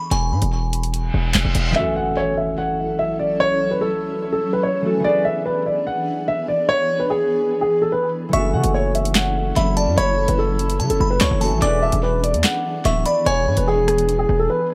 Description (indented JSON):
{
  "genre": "hip hop, drill",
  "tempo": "146 BPM",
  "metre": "4/4",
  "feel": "half-time",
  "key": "F# minor",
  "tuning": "A4 = 440 Hz",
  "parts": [
    { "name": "delicate synth tine bell", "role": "second line", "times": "0.0-1.3, 8.3-14.5 s", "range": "G#5 to D6", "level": "-30 LUFS", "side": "equal", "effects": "chorus, tape echo" },
    { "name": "concert harp", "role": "accompaniment", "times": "0.0-14.7 s", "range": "E3 to B4", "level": "-30 LUFS", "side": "equal", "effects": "none" },
    { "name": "distorted 808-style bass", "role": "bass", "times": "0.1-1.7, 8.3-14.5 s", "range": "D1 to C#3", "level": "-22 LUFS", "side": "equal", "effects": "distortion" },
    { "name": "drill drum kit", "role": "drums", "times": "0.1-1.6, 8.3-14.2 s", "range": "handclaps, hi-hat, rim click, snare drum", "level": "-26 LUFS", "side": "equal", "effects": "overdrive, tape echo" },
    { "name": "reverse cymbal and impact", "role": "sound effects", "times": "1.1-3.4 s", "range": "none", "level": "-32 LUFS", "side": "equal", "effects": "none" },
    { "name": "dark concert grand piano", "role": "melody", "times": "1.8-14.7 s", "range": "G#4 to F#5", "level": "-22 LUFS", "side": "equal", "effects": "tape echo" },
    { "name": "granular cloud pad", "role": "sustained chords", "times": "2.6-14.7 s", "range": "E3 to A4", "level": "-30 LUFS", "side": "equal", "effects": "built-in reverb" }
  ],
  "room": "light reverb",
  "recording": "echo-heavy mix",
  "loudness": "-20 LUFS",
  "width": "mono",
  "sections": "0.0-1.8 A section; 1.8-14.7 B section",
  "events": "break 0.0-1.8, 14.5; reverse cymbal 1.1-1.8; impact 1.8-3.4",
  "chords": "0.0 E7; 1.8 F#m7; 5.0 E7; 8.3 F#m7; 11.6 E7",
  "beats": "| 0.11 0.52 0.94 1.35 | 1.76 2.17 2.58 2.99 | 3.40 3.81 4.22 4.63 | 5.04 5.46 5.87 6.28 | 6.69 7.10 7.51 7.92 | 8.33 8.74 9.15 9.56 | 9.98 10.39 10.80 11.21 | 11.62 12.03 12.44 12.85 | 13.26 13.67 14.09 14.50"
}